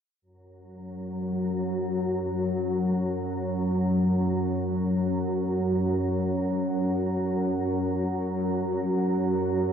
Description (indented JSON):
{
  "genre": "ambient",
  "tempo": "free time",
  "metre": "none",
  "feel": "none",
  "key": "unclear",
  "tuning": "A4 = 439 Hz",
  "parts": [
    { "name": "organ-like drone", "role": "solo", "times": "0.8-9.7 s", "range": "F#2 to F#3", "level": "-25 LUFS", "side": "equal", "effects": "ensemble chorus, built-in reverb, diffuse ambient delay" }
  ],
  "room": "wet cathedral reverb, RT60 6.2 s",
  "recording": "dark, warm production",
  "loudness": "-24 LUFS",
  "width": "side -8 dB against mid",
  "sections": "0.2-9.7 A section",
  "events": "none",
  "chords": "none"
}